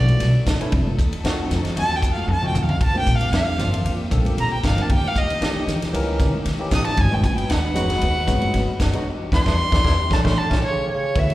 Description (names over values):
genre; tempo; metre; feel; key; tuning
electric jazz fusion; 115 BPM; 4/4; swing 54% on 16ths; unclear; A4 = 440 Hz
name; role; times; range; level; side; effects
warm violin; melody; 0.0-11.3 s; C#5 to Eb6; -24 LUFS; right 1 dB; slapback echo
barky tine electric piano; accompaniment; 0.0-11.3 s; E3 to Bb4; -28 LUFS; left 1 dB; medium stereo tremolo, analog chorus, slapback echo
dark studio string section; sustained chords; 0.0-11.3 s; D3 to B4; -32 LUFS; left 1 dB; none
upright bass; bass; 0.0-11.3 s; F1 to Eb3; -22 LUFS; equal; none
crisp fusion drum kit; drums; 0.1-11.3 s; hi-hat, kick drum, ride cymbal, snare drum, toms; -23 LUFS; equal; none
congas; percussion; 0.1-10.6 s; none; -30 LUFS; right 1 dB; none
warm bass clarinet; second line; 10.7-11.3 s; C#3 to E3; -28 LUFS; left 1 dB; none
room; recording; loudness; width
light reverb, small room reverb; live gig heard through the venue's PA, recital hall reverb; -18 LUFS; side -16 dB against mid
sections
0.0-11.2 A section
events
violin solo 0.0-11.2; drum fill 2.3-2.8, 10.1-11.2; band accent 9.1-11.2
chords
0.0 Bm11; 0.7 F7b9; 2.8 Bb69; 4.9 Eb7b9; 7.0 G#m7; 9.1 Em9; 10.1 A7